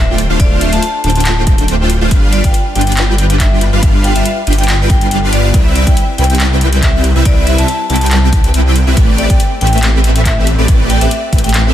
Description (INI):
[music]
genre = future bass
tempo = 140 BPM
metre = 4/4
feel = swing 54% on 16ths, half-time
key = C major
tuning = A4 = 440 Hz
[part]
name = vibraphone with hard mallets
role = melody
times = 0.0-11.6 s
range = D5 to A5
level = -20 LUFS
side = left 2 dB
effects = sidechain pumping, ping-pong delay
[part]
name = supersaw chords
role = riff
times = 0.0-11.7 s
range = G3 to G5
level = -16 LUFS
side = right 1 dB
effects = ensemble chorus, sidechain pumping
[part]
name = wide detuned saw bass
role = bass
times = 0.0-11.7 s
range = D1 to C2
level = -13 LUFS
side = equal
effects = chorus, sidechain pumping
[part]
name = trap drum kit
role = drums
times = 0.2-11.6 s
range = handclaps, hi-hat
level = -19 LUFS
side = left 1 dB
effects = studio reverb
[part]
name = electronic kick drum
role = drums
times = 0.4-11.4 s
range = none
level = -12 LUFS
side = equal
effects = studio reverb
[sound]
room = little or no reverb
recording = dense, heavily limited modern master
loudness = -9 LUFS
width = side -12 dB against mid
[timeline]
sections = 0.0-11.7 A section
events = none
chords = 0.0 Dm7; 2.1 G7; 5.5 Cmaj7; 9.0 Am11